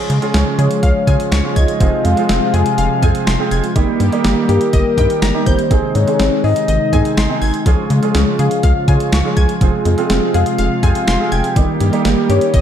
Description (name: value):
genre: synth-pop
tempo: 123 BPM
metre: 4/4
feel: straight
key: F minor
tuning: A4 = 444 Hz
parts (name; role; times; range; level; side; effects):
- warm grand piano; accompaniment; 0.0-12.5 s; C3 to Ab4; -21 LUFS; right 5 dB; wide subtle chorus
- brassy analog pad; sustained chords; 0.0-12.6 s; C3 to G4; -19 LUFS; equal; chorus
- analog pluck; arpeggios; 0.1-12.6 s; Eb3 to Ab6; -23 LUFS; left 2 dB; chorus, ping-pong delay
- rubbery square bass; bass; 0.1-12.6 s; F1 to Db3; -16 LUFS; equal; none
- clean 12-bit digital drum machine; drums; 0.1-12.6 s; hi-hat, kick drum, snare drum; -18 LUFS; equal; none
- soft octave-layered synth lead; melody; 0.6-12.6 s; Bb4 to Ab5; -20 LUFS; left 3 dB; chorus, phaser, ping-pong delay
room: moderate lush hall reverb, RT60 1.7 s, digital ambience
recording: dreamy mix soaked in reverb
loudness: -12 LUFS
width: side -9 dB against mid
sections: 0.0-12.6 A section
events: none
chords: 0.0 Db; 1.8 Fm; 3.8 Eb/G; 5.7 Ab; 7.7 Db; 9.6 Fm; 11.6 Eb/G